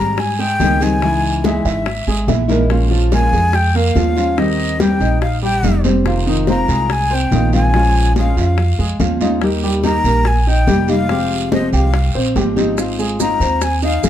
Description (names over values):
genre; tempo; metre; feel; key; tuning
latin, Cuban son and guajira; 143 BPM; 4/4; straight; Ab major; A4 = 440 Hz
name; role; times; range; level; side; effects
breathy jazz flute; melody; 0.0-14.1 s; Eb5 to Bb5; -20 LUFS; left 2 dB; plate reverb
nylon-string guitar; accompaniment; 0.0-14.1 s; C3 to Ab4; -20 LUFS; left 2 dB; none
dark baby grand piano; arpeggios; 0.0-14.1 s; Eb3 to G5; -21 LUFS; right 1 dB; none
upright bass; bass; 0.0-14.1 s; F1 to Ab2; -17 LUFS; right 1 dB; none
bongos; percussion; 0.2-14.1 s; none; -25 LUFS; left 6 dB; none
congas; percussion; 0.2-14.1 s; none; -24 LUFS; right 2 dB; none
guiro; percussion; 0.2-14.1 s; none; -30 LUFS; right 6 dB; none
maracas; percussion; 12.8-14.1 s; none; -28 LUFS; right 9 dB; none
room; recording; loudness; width
light reverb; dark, warm production; -13 LUFS; side -11 dB against mid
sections
0.0-14.1 A section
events
none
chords
0.0 Abmaj7; 1.0 Dbmadd9; 2.7 Bbm7; 4.4 Eb6; 6.1 Fm7; 7.7 Bbm7; 9.4 Eb; 11.1 Fmadd9; 12.8 Ab6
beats
0.18 0.60 | 1.02 1.44 1.86 2.28 | 2.70 3.12 3.54 3.96 | 4.38 4.80 5.22 5.64 | 6.06 6.48 6.90 7.32 | 7.74 8.16 8.58 9.00 | 9.42 9.84 10.26 10.68 | 11.10 11.52 11.94 12.36 | 12.78 13.20 13.62 14.04